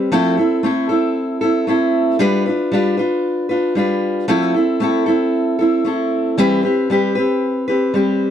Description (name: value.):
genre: pop.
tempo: 115 BPM.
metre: 4/4.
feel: straight.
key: unclear.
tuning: A4 = 443 Hz.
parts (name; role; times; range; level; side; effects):
fingerpicked steel-string acoustic guitar; solo; 0.0-8.3 s; E3 to B4; -15 LUFS; equal; none.
room: moderate small room reverb, RT60 0.5 s.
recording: dry, close 1970s-style studio recording.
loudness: -15 LUFS.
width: side -9 dB against mid.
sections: 0.0-8.3 A section.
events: none.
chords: 0.1 Fmaj7; 2.2 G7; 4.3 Fmaj7; 6.4 Cmaj7/E.